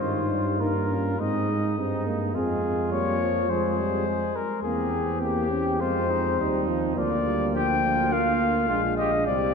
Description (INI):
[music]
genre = classical, brass quintet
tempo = 104 BPM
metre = 4/4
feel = rubato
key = unclear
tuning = A4 = 440 Hz
[part]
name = warm cornet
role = melody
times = 0.0-9.5 s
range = G4 to G5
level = -27 LUFS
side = left 6 dB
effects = none
[part]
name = clear trumpet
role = second line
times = 0.0-9.5 s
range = Eb4 to Ab4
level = -32 LUFS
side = right 6 dB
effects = none
[part]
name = mellow French horn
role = accompaniment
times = 0.0-9.5 s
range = Ab3 to Eb4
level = -30 LUFS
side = left 3 dB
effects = none
[part]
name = warm euphonium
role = accompaniment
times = 0.0-9.5 s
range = Eb3 to C4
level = -31 LUFS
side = right 5 dB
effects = none
[part]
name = mellow bass trombone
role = bass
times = 0.0-9.5 s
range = Bb1 to Ab2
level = -29 LUFS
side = right 2 dB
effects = none
[sound]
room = wet church reverb, RT60 3.4 s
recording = dark, warm production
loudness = -22 LUFS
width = side -5 dB against mid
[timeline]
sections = 0.0-9.5 A section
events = none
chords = 0.0 Eb7/G; 1.2 Ab; 2.4 Fm; 4.6 C7/E; 5.8 Fm; 7.0 Bb/D